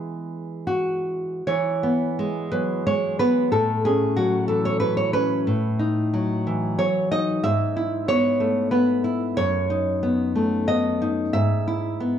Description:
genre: romantic piece for solo classical guitar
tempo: 72-95 BPM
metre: 3/4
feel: rubato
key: E major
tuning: A4 = 440 Hz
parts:
  - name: nylon-string guitar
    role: solo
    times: 0.0-12.2 s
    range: F#2 to E5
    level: -20 LUFS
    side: equal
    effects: none
room: moderate recital hall reverb, RT60 1.5 s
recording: dark, warm production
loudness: -20 LUFS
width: side -9 dB against mid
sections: 0.0-1.5 A section; 1.5-12.2 B section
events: none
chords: 0.0 E; 3.5 F#m/A; 5.5 B7/A; 7.4 E/G#; 9.4 B7/F#; 11.3 E/G#

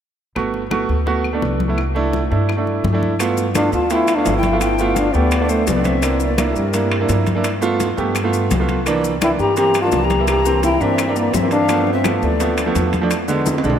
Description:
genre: Afro-Cuban jazz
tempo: 170 BPM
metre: 4/4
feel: straight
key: G major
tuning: A4 = 444 Hz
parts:
  - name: clear baby grand piano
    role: accompaniment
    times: 0.4-13.8 s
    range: D3 to G4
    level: -20 LUFS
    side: right 4 dB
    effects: none
  - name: upright bass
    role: bass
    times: 0.4-13.8 s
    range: G1 to G2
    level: -22 LUFS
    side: equal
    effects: none
  - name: bongos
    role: percussion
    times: 0.4-13.8 s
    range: none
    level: -30 LUFS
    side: left 7 dB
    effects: none
  - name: claves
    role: percussion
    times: 0.4-13.3 s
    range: none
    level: -34 LUFS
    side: left 9 dB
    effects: none
  - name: congas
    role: percussion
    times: 0.4-13.8 s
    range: none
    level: -28 LUFS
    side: left 3 dB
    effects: none
  - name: maracas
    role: percussion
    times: 3.2-13.8 s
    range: none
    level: -32 LUFS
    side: left 11 dB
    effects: none
  - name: timbales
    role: percussion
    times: 3.2-13.8 s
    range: none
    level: -28 LUFS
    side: right 4 dB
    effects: none
  - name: breathy trombone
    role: melody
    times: 3.6-7.1, 9.2-12.7 s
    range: F#3 to G4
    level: -20 LUFS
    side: left 1 dB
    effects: none
  - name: breathy bright jazz flute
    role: second line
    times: 3.6-7.1, 9.2-12.7 s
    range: A4 to Bb5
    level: -26 LUFS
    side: left 5 dB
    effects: none
room: wet cathedral reverb, RT60 6.9 s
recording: in a vast, echoing space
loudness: -15 LUFS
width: side -9 dB against mid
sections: 0.4-3.2 A section; 3.2-13.8 B section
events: drum fill 13.5-13.8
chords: 0.4 Gmaj9; 1.8 C69; 3.2 G7; 6.0 C7; 7.4 G7; 8.9 C7; 11.7 G7; 13.1 E7

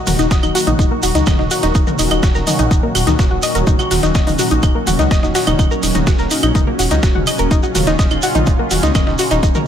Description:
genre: melodic techno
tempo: 125 BPM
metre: 4/4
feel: straight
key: unclear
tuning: A4 = 440 Hz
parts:
  - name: lush unison pad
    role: sustained chords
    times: 0.0-9.7 s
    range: Ab2 to Gb4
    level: -21 LUFS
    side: equal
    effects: chorus, phaser, sidechain pumping
  - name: soft round pluck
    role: arpeggios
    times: 0.1-9.6 s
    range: Bb3 to Eb6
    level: -19 LUFS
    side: left 2 dB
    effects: chorus, sidechain pumping, ping-pong delay
  - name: dark detuned saw bass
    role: bass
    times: 0.1-9.5 s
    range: Eb1 to Db2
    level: -19 LUFS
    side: equal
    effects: sidechain pumping
  - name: deep house drum kit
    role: drums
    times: 0.1-9.6 s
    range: claves, hi-hat, toms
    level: -22 LUFS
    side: equal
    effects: overdrive
  - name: dusty soul sampler-style drum kit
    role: drums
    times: 0.1-9.5 s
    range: hi-hat, snare drum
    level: -29 LUFS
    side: equal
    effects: sidechain pumping on hats, high-pass filter on hats, high-pass filter on snare
  - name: shekere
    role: percussion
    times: 0.1-9.6 s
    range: none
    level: -25 LUFS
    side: right 5 dB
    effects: none
  - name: electronic kick drum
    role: drums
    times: 0.3-9.5 s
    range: none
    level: -15 LUFS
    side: equal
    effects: overdrive
room: digital ambience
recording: none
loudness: -12 LUFS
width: side -9 dB against mid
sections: 0.0-9.7 A section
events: none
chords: 0.0 Ebm; 5.6 Gb/Eb

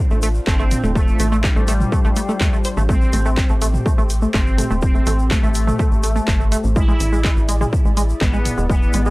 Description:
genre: melodic techno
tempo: 124 BPM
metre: 4/4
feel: straight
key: A minor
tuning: A4 = 438 Hz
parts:
  - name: warm analog pad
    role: sustained chords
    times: 0.0-9.1 s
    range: A3 to D5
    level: -32 LUFS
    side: left 1 dB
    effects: chorus, sidechain pumping
  - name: tight sequenced synth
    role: arpeggios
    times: 0.1-9.1 s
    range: G#3 to C5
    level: -24 LUFS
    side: right 1 dB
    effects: chorus, cassette tape, sidechain pumping, tape echo
  - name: tight sequencer bass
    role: bass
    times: 0.1-9.1 s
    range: E1 to E2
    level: -20 LUFS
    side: equal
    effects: sidechain pumping
  - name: egg shaker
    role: percussion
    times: 0.1-9.1 s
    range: none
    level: -34 LUFS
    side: left 2 dB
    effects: none
  - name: punchy analog drum machine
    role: drums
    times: 0.2-9.0 s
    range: handclaps, hi-hat, toms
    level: -26 LUFS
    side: equal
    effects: overdrive
  - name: resonant sweep polysynth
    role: melody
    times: 0.5-9.1 s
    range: G3 to E4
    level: -25 LUFS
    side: left 1 dB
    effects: chorus, sidechain pumping, tape echo
  - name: electronic kick drum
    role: drums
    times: 0.5-8.8 s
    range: none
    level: -18 LUFS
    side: equal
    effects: none
room: digital ambience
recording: dry, gritty hardware recording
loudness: -15 LUFS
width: side -21 dB against mid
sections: 0.0-9.1 A section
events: none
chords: 0.0 Dm7; 2.9 Am7; 6.8 E7

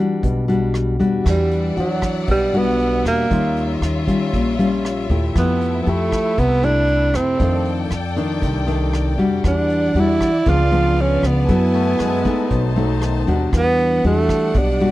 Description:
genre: bossa nova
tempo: 117 BPM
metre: 4/4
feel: straight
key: E minor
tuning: A4 = 441 Hz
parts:
  - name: nylon-string guitar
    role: accompaniment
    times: 0.0-14.9 s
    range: F2 to A4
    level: -20 LUFS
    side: left 2 dB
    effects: none
  - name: upright bass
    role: bass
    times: 0.2-14.9 s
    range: A#1 to F#2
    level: -21 LUFS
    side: equal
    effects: none
  - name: vintage brush drum kit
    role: drums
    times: 0.2-14.9 s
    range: crash cymbal, hi-hat, kick drum, rim click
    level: -25 LUFS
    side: equal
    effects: none
  - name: clear studio string section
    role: sustained chords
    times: 1.2-14.9 s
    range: D4 to A5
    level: -29 LUFS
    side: left 3 dB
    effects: none
  - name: breathy tenor saxophone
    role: melody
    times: 1.3-14.9 s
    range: F#3 to E#4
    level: -19 LUFS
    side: right 2 dB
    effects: none
  - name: breathy trombone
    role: second line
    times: 11.7-13.4 s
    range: D#3 to A3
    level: -27 LUFS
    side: left 11 dB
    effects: tape echo
room: little or no reverb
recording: dry, close 1970s-style studio recording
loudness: -16 LUFS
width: side -16 dB against mid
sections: 0.0-1.3 A section; 1.3-14.9 A section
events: none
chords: 0.0 Em9; 3.3 D#9; 5.3 Fmaj9; 7.4 F13; 9.4 Em9; 10.5 C#7b9; 11.5 F#m11; 12.5 B7b9; 13.5 Em9

